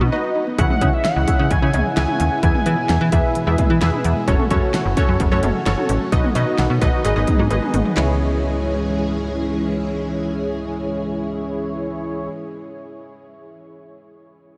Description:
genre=synth-pop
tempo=130 BPM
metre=4/4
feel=straight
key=C# minor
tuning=A4 = 440 Hz
part: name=funky polysynth comp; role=accompaniment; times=0.0-12.3 s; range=C#4 to E5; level=-27 LUFS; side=equal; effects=chorus
part: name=slap-like FM bass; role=bass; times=0.0-12.3 s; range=F#1 to E3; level=-24 LUFS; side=equal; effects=none
part: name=pop drum kit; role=drums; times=0.0-8.1 s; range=cowbell, handclaps, hi-hat, kick drum, snare drum, toms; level=-24 LUFS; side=equal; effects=none
part: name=soft round pluck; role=arpeggios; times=0.2-12.3 s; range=E3 to F#5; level=-31 LUFS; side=equal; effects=none
part: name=unison lead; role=melody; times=0.6-3.3 s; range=E5 to G#5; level=-28 LUFS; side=equal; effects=diffuse ambient delay
part: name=string machine, full ensemble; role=sustained chords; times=0.6-12.3 s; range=B2 to G#4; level=-28 LUFS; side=equal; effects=ensemble chorus
room=wet huge ambient reverb, RT60 7.8 s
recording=dreamy mix soaked in reverb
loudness=-19 LUFS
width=mono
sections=0.0-8.0 A section; 8.0-11.7 B section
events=break 0.1-0.6; drum fill 7.5-8.0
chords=0.0 B; 0.6 C#m; 2.4 E; 4.3 F#m; 6.1 B; 7.0 G#m; 8.0 C#m

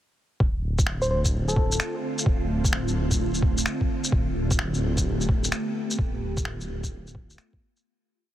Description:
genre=future garage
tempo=129 BPM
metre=4/4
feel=swing 65% on 16ths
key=D dorian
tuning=A4 = 440 Hz
part: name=ethereal airy pad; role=sustained chords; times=1.1-7.8 s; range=D3 to G4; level=-30 LUFS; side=right 1 dB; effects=ensemble chorus, built-in reverb, phaser, sidechain pumping
part: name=swelling detuned saw bass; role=bass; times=0.4-7.4 s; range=D1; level=-28 LUFS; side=equal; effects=sidechain pumping
part: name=electronic kick drum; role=drums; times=0.4-7.6 s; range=none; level=-24 LUFS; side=equal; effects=overdrive
part: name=electronic shaker and finger snaps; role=drums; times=0.8-7.8 s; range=none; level=-31 LUFS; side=left 1 dB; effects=overdrive
part: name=soft struck synth lead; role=melody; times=1.0-1.9 s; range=A4 to C5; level=-30 LUFS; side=left 1 dB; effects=chorus, cassette tape, digital delay
room=little or no reverb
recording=heavily compressed radio sound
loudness=-23 LUFS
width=side -12 dB against mid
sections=0.4-7.8 groove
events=fade-out 5.4-7.8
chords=0.4 Dm7; 4.1 Gadd9/D

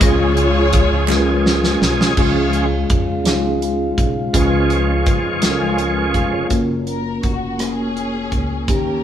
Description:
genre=slow gospel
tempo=55 BPM (dotted quarters)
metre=6/8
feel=straight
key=F# major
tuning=A4 = 441 Hz
part: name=warm studio string section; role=melody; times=0.0-1.5, 6.9-9.0 s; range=C#4 to C#5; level=-23 LUFS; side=left 2 dB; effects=none
part: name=mellow tine electric piano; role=accompaniment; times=0.0-9.0 s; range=C#3 to G#5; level=-19 LUFS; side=left 1 dB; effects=medium stereo tremolo
part: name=bright tonewheel organ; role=sustained chords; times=0.0-6.5 s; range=E#3 to G#4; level=-21 LUFS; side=right 1 dB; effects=slow rotary speaker, overdrive, chorus vibrato
part: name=upright bass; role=bass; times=0.0-9.0 s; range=E#1 to E#2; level=-22 LUFS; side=equal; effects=none
part: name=modern studio drum kit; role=drums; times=0.0-8.9 s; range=crash cymbal, hi-hat, kick drum, rim click, snare drum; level=-20 LUFS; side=equal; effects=none
part: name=group handclap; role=percussion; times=1.1-1.4 s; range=none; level=-28 LUFS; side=right 3 dB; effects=none
part: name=mellow French horn section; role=sustained chords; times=2.2-6.5 s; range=E#4 to E#5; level=-29 LUFS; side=equal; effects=none
room=wet stone room reverb, RT60 1.3 s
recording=band playing live in one room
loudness=-15 LUFS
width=side -10 dB against mid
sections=0.0-2.2 A section; 2.2-6.5 B section; 6.5-9.0 C section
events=drum fill 1.1-2.2; tonewheel organ solo 2.2-6.5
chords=0.0 C#; 6.5 F#

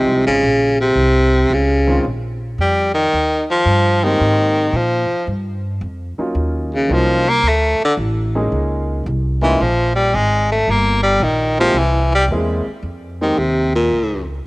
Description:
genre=jazz, small-group swing and bop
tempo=111 BPM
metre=4/4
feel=swing 68% on 8ths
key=unclear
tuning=A4 = 440 Hz
part: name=bright baritone saxophone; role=melody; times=0.0-14.2 s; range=Bb2 to Bb3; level=-15 LUFS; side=equal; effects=cassette tape
part: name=warm baby grand piano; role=accompaniment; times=0.0-13.4 s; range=Eb3 to Ab4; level=-22 LUFS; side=equal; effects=cassette tape
part: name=upright bass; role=bass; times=0.0-14.4 s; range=G1 to Bb2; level=-19 LUFS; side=equal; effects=none
room=light reverb, small room ambience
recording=home recording on cassette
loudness=-14 LUFS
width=side -22 dB against mid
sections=0.0-12.8 A section; 12.8-14.5 B section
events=baritone saxophone solo 0.0-12.8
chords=0.0 Dbmaj9#11; 2.0 Bb5; 3.1 Eb69; 4.2 Abmaj9; 6.4 Ebm9; 7.4 D5; 8.5 Dbsus2; 10.7 Abmaj9/G; 11.8 C7b13; 12.8 F7sus4

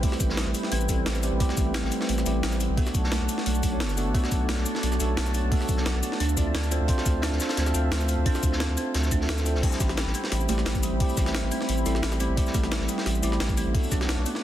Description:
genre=liquid drum and bass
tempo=175 BPM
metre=4/4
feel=straight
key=A minor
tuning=A4 = 440 Hz
part: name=bell-like tine electric piano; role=accompaniment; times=0.0-14.4 s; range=G3 to E5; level=-31 LUFS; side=equal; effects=dub echo
part: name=warm analog pad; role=sustained chords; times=0.0-14.4 s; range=B4 to B5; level=-35 LUFS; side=right 1 dB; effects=chorus, sidechain pumping
part: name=kalimba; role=arpeggios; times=0.0-14.4 s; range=F#3 to A4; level=-32 LUFS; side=right 3 dB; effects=ping-pong delay
part: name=saturated sub bass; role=bass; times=0.0-14.3 s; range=F#1 to D2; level=-27 LUFS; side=equal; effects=none
part: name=breakbeat sampler-style drum kit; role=drums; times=0.0-14.4 s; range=crash cymbal, hi-hat, shaker, snare drum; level=-32 LUFS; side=left 1 dB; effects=none
part: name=electronic kick drum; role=drums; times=0.0-14.0 s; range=none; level=-25 LUFS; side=equal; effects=none
part: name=vintage drum kit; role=drums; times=0.0-14.3 s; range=hi-hat, snare drum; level=-36 LUFS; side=equal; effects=high-pass filter on hats, high-pass filter on snare, high-pass filter on room
room=light reverb, small room ambience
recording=dense, heavily limited modern master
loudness=-23 LUFS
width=side -12 dB against mid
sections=0.0-9.6 A section; 9.6-14.4 A section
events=drop 0.0-9.6, 9.6-14.4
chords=0.0 Am7; 2.8 Bm7; 6.2 Dm7; 9.6 Am7; 13.7 Bm7

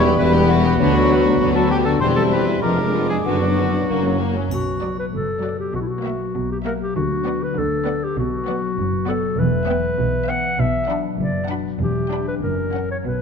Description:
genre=cinematic, playful, whimsical film cue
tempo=98 BPM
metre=2/4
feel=straight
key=B minor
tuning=A4 = 440 Hz
part: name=large celesta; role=melody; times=0.0-4.2 s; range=F#5 to C#6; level=-27 LUFS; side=left 5 dB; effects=none
part: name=rich studio violin section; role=melody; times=0.0-13.0 s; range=C#4 to B5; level=-33 LUFS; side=left 5 dB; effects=none
part: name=clear oboe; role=second line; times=0.0-4.2 s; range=F#4 to C5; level=-28 LUFS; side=right 3 dB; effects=none
part: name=mellow clarinet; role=second line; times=0.0-13.2 s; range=E4 to F#5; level=-25 LUFS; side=equal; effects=none
part: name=rich studio violin section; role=second line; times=0.0-13.0 s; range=A#3 to G5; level=-30 LUFS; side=left 5 dB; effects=none
part: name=silver concert flute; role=second line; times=0.0-4.2 s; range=B5 to D6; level=-30 LUFS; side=equal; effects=none
part: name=dark bassoon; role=accompaniment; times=0.0-4.2 s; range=F#3 to B3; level=-24 LUFS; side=right 3 dB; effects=none
part: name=rich symphonic viola section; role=accompaniment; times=0.0-13.0 s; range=D3 to D4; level=-28 LUFS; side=equal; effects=none
part: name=dark French horn section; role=sustained chords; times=0.0-4.2 s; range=F#3 to D4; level=-23 LUFS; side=left 5 dB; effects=none
part: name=concert harp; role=arpeggios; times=0.0-13.2 s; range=E2 to B4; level=-25 LUFS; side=left 10 dB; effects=none
part: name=mellow tuba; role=bass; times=0.0-4.4 s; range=E1 to D2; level=-26 LUFS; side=right 4 dB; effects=none
part: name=rich studio double bass section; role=bass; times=0.0-13.2 s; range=E1 to D2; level=-26 LUFS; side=right 3 dB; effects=none
part: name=warm studio cello section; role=bass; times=0.0-13.2 s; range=D2 to D3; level=-27 LUFS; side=right 2 dB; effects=none
part: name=triangle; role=percussion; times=4.5-5.7 s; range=none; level=-45 LUFS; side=left 3 dB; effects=none
room=moderate scoring stage reverb, RT60 1.9 s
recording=none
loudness=-17 LUFS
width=side -6 dB against mid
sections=0.0-4.5 A section; 4.5-13.2 B section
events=none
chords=0.0 Em; 0.8 Bm/D; 2.0 C/E; 2.6 Fdim7; 3.3 Bm/F#; 3.9 F#; 4.5 Bm; 5.7 F#7/B; 7.0 Bm/D; 8.2 Bm; 9.4 Em; 10.6 Bm; 11.8 Em7; 12.4 F#

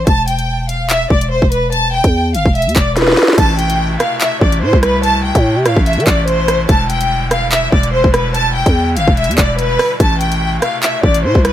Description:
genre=hip hop, drill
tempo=145 BPM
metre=4/4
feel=half-time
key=A minor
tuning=A4 = 440 Hz
part: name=clear studio violin section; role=melody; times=0.0-11.5 s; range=B4 to A5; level=-16 LUFS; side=left 1 dB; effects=none
part: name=growling 808-style bass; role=bass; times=0.0-11.5 s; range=E1 to E3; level=-16 LUFS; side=equal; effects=none
part: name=drill drum kit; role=drums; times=0.1-11.5 s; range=crash cymbal, handclaps, hi-hat, kick drum, rim click, snare drum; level=-14 LUFS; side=equal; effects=none
part: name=pipe organ, clarinet reed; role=sustained chords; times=3.4-11.5 s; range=B2 to E4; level=-23 LUFS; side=equal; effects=none
room=digital ambience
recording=none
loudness=-11 LUFS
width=side -12 dB against mid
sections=0.0-3.4 A section; 3.4-11.5 B section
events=drum fill 3.0-3.4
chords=0.1 Em; 3.4 Amadd9; 6.7 Em7; 10.0 Amadd9

